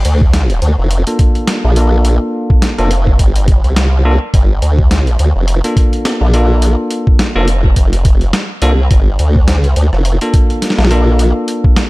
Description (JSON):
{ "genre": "glitch hop", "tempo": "105 BPM", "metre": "4/4", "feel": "swing 57% on 16ths", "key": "G minor", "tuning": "A4 = 445 Hz", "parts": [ { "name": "formant-sweep wobble bass", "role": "bass", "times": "0.0-11.3 s", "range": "F1 to D2", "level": "-11 LUFS", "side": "equal", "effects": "chorus" }, { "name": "boom bap sampler-style drum kit", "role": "drums", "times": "0.0-11.9 s", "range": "hi-hat, rim click, snare drum", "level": "-19 LUFS", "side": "equal", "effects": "none" }, { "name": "electronic kick drum", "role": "drums", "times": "0.2-11.7 s", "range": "none", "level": "-10 LUFS", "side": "equal", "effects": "none" }, { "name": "bell-like tine electric piano", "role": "stabs", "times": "1.1-11.9 s", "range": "Bb3 to A4", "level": "-18 LUFS", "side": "equal", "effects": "sidechain pumping, low-pass filter, tape echo" } ], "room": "digital ambience", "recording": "dark, warm production", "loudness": "-10 LUFS", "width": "side -21 dB against mid", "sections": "0.0-11.9 A section", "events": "filter sweep on tine electric piano 0.0-11.9", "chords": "0.0 Gm9 (rootless)" }